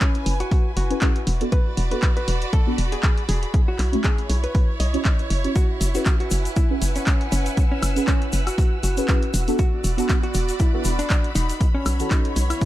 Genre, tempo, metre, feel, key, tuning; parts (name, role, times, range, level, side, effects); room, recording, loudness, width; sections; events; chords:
deep house; 119 BPM; 4/4; swing 56% on 16ths; F# minor; A4 = 440 Hz
hollow-body jazz guitar; melody; 0.0-12.7 s; C#4 to D#5; -30 LUFS; equal; tape echo
deep mellow chord stab; stabs; 0.0-12.7 s; E3 to C#5; -27 LUFS; right 1 dB; chorus, ping-pong delay
electronic kick drum; drums; 0.0-12.7 s; -20 LUFS; equal
punchy analog drum machine; drums; 0.0-12.7 s; handclaps, hi-hat, woodblock; -29 LUFS; equal
rich studio string section; texture; 0.0-12.7 s; B3 to B5; -31 LUFS; right 2 dB; sidechain pumping
hollow knocking FM bass; bass; 0.3-12.5 s; E1 to B1; -22 LUFS; equal; sidechain pumping
egg shaker; percussion; 5.6-12.7 s; -34 LUFS; left 6 dB
soft string machine; texture; 5.6-12.7 s; F#5 to E6; -37 LUFS; left 1 dB; phaser, ensemble chorus, sidechain pumping
digital ambience; -19 LUFS; side -14 dB against mid
0.0-12.7 A section
filter sweep on synth stab 0.0-12.7
0.0 F#9sus4; 1.3 E9sus4; 3.5 B9sus4; 5.6 F#9sus4; 9.3 E9sus4; 11.6 B9sus4